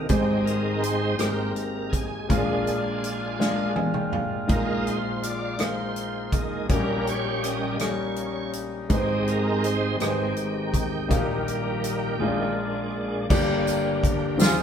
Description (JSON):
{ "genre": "slow gospel", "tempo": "54 BPM (dotted quarters)", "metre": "6/8", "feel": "straight", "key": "Eb major", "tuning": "A4 = 439 Hz", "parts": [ { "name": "clear concert grand piano", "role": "accompaniment", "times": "0.0-14.6 s", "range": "G1 to Ab5", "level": "-26 LUFS", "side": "left 2 dB", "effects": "none" }, { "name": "bright tonewheel organ", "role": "sustained chords", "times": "0.0-14.6 s", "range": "Ab2 to Eb5", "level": "-28 LUFS", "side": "right 2 dB", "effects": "slow rotary speaker, chorus vibrato" }, { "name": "mellow woodwind section", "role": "sustained chords", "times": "0.0-13.3 s", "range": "Bb2 to G5", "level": "-37 LUFS", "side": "right 1 dB", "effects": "none" }, { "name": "natural country drum kit", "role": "drums", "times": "0.1-14.6 s", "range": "crash cymbal, hi-hat, kick drum, rim click, snare drum, toms", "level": "-26 LUFS", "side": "equal", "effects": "none" }, { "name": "tambourine", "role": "percussion", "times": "13.3-14.6 s", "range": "none", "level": "-36 LUFS", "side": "right 5 dB", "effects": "none" }, { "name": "dark horn section", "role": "melody", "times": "14.4-14.6 s", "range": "Ab3 to F4", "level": "-24 LUFS", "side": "right 1 dB", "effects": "none" } ], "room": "wet stone room reverb, RT60 1.2 s", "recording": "band playing live in one room", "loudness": "-23 LUFS", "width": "side -8 dB against mid", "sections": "0.0-13.3 A section; 13.3-14.6 B section", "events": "tonewheel organ solo 0.0-13.3; drum fill 3.4-4.5; grand piano fill 3.4-4.5", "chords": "0.1 Abmaj7; 2.3 Bb7; 4.5 Bb7sus4; 6.7 Eb7/Bb; 8.9 Abmaj7; 11.1 Eb/Bb; 12.2 Bb7; 13.3 Gm" }